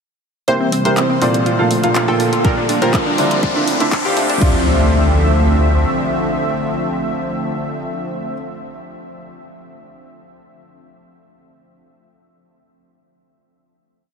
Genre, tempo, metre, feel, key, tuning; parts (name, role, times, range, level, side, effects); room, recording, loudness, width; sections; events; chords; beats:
progressive house; 122 BPM; 4/4; straight; D minor; A4 = 442 Hz
supersaw pad; sustained chords; 0.5-8.3 s; C3 to E5; -20 LUFS; equal; analog chorus, sidechain pumping, low-pass filter
analog pluck; arpeggios; 0.5-8.3 s; C4 to C5; -21 LUFS; equal; chorus, sidechain pumping, diffuse ambient delay
warm baby grand piano; stabs; 0.5-8.3 s; Bb2 to G5; -20 LUFS; right 1 dB; wide subtle chorus, sidechain pumping, low-pass filter, diffuse ambient delay
round analog bass; bass; 0.5-5.8 s; C2 to D2; -16 LUFS; equal; sidechain pumping, high-pass filter
pop drum kit; drums; 0.5-4.5 s; crash cymbal, handclaps, hi-hat; -25 LUFS; equal; sidechain pumping on hats, sidechain pumping on cymbals
riser and impact; sound effects; 2.3-8.4 s; -26 LUFS; left 1 dB
electronic kick drum; drums; 2.4-4.5 s; -17 LUFS; equal
wet huge ambient reverb, RT60 7.7 s; dreamy mix soaked in reverb, high-pass filter; -14 LUFS; side -6 dB against mid
0.5-4.4 build; 4.4-8.3 final chord
build-up 0.5-4.4; filter sweep on grand piano 0.5-4.4; filter sweep on supersaw synth 0.5-4.4; filter sweep 0.5-4.4; riser 2.3-4.4
0.5 C7; 1.5 Bbmaj7; 2.4 Gm7/Bb; 3.4 Dm9
| 0.48 0.97 1.46 1.96 | 2.45 2.94 3.43 3.92 | 4.41 4.91 5.40 5.89 | 6.38 6.87 7.36 7.86